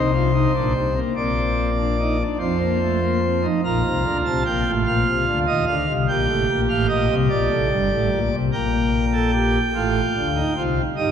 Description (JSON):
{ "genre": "classical, baroque-style 3-part fugue for pipe organ", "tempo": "49 BPM (dotted quarters)", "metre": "6/8", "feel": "straight", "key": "Bb major", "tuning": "A4 = 438 Hz", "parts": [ { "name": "pipe organ, principal chorus", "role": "solo", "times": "0.0-11.1 s", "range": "G1 to Bb5", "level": "-18 LUFS", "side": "equal", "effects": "none" } ], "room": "wet church reverb, RT60 2.7 s", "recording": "none", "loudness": "-18 LUFS", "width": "side -8 dB against mid", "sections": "0.0-3.6 A section; 3.6-8.5 B section; 8.5-11.1 A section", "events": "none", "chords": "0.0 Cm7; 1.2 Bbadd9; 2.4 F; 3.6 Bb; 6.1 Eb; 7.3 Bb; 8.5 Gm/Bb; 9.8 F/A" }